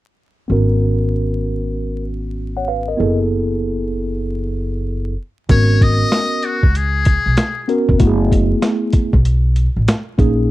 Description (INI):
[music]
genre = hip hop, jazz-hop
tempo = 96 BPM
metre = 4/4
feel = swing 63% on 16ths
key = unclear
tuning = A4 = 439 Hz
[part]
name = mellow tine electric piano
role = accompaniment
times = 0.5-10.5 s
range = A3 to F#5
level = -19 LUFS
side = equal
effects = medium stereo tremolo
[part]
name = upright bass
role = bass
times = 0.5-10.5 s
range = E#1 to C#2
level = -17 LUFS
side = equal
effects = none
[part]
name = trumpet with metal mute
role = melody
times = 5.5-7.7 s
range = F#4 to D#5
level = -20 LUFS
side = left 4 dB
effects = slapback echo
[part]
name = boom bap sampler-style drum kit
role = drums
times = 5.5-10.4 s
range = hi-hat, kick drum, snare drum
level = -15 LUFS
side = equal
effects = none
[sound]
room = little or no reverb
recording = dry, close 1970s-style studio recording, vinyl crackle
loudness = -15 LUFS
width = side -16 dB against mid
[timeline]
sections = 0.5-5.5 A section; 5.5-10.5 B section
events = none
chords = 0.5 G#m11; 3.0 F#m11; 5.2 N.C.; 5.5 G#m11; 8.0 F#m11